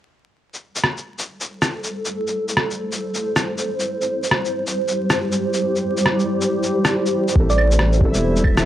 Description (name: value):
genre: future garage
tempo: 138 BPM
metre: 4/4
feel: swing 62% on 16ths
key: A minor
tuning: A4 = 438 Hz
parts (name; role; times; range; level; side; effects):
- granular cloud pad; sustained chords; 1.8-8.7 s; G3 to C5; -21 LUFS; equal; built-in reverb, sidechain pumping
- electronic shaker, rim click and claves; drums; 0.5-8.6 s; none; -21 LUFS; equal; overdrive
- felt-muted upright piano; accompaniment; 7.3-8.7 s; G3 to A4; -25 LUFS; equal; sidechain pumping, analog delay
- swelling detuned saw bass; bass; 7.4-8.7 s; E1 to A1; -18 LUFS; equal; sidechain pumping
- electronic kick drum; drums; 7.4-8.6 s; none; -17 LUFS; equal; overdrive
- backwards swelling texture; texture; 8.1-8.7 s; E4 to E5; -31 LUFS; left 1 dB; built-in reverb
- thumb-piano-like synth pluck; melody; 7.5-7.7 s; D5; -24 LUFS; right 3 dB; wide subtle chorus, cassette tape, tape echo
room: light reverb, digital ambience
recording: dry, gritty hardware recording, vinyl crackle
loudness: -18 LUFS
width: side -12 dB against mid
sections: 0.4-7.4 A section; 7.4-8.7 B section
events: filter sweep on ambient pad 0.4-7.4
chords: 0.4 Am7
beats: | 0.40 0.84 1.27 1.71 | 2.14 2.58 3.01 3.45 | 3.88 4.32 4.75 5.18 | 5.62 6.05 6.49 6.92 | 7.36 7.79 8.23